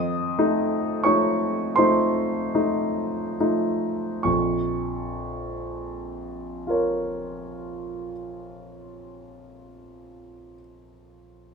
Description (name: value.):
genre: classical, romantic nocturne for solo piano.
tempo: 22-31 BPM (dotted quarters).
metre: 12/8.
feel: rubato.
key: Bb minor.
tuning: A4 = 439 Hz.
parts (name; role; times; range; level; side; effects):
warm grand piano; solo; 0.0-11.5 s; Bb1 to Eb6; -23 LUFS; equal; none.
room: moderate large studio reverb, RT60 0.9 s.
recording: minimal, uncompressed stereo recording.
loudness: -22 LUFS.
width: side -5 dB against mid.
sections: 0.0-4.3 A section; 4.3-11.5 B section.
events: slowing down 0.0-4.3.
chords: 0.0 F7; 4.3 Bbm.